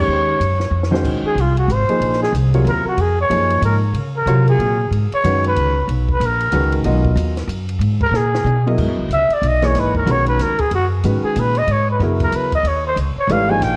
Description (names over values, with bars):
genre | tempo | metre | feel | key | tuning
modal jazz | 186 BPM | 3/4 | swing 62% on 8ths | Bb phrygian, C# dorian from 8.8 s | A4 = 439 Hz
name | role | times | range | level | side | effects
growling trumpet | melody | 0.0-13.8 s | F4 to G#5 | -21 LUFS | equal | tape echo
warm concert grand piano | accompaniment | 0.0-13.8 s | C3 to Eb5 | -24 LUFS | equal | none
upright bass | bass | 0.0-13.8 s | Ab1 to Db3 | -21 LUFS | equal | none
compact cocktail drum kit | drums | 0.4-13.7 s | crash cymbal, hi-hat, kick drum, ride cymbal, snare drum, toms | -31 LUFS | equal | none
room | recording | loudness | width
moderate spring reverb, RT60 1.7 s, small room reverb | worn, warbling old tape, cassette tape, vinyl crackle, warbly pitch drift | -17 LUFS | mono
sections
0.0-1.0 A section; 1.0-8.8 B section; 8.8-13.8 B section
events
drum fill 0.7-1.0, 8.1-8.8; trumpet solo 1.0-13.8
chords
0.0 D#9sus4; 1.0 Bbm11; 4.9 Abm11; 8.8 C#9sus4; 12.7 D#9sus4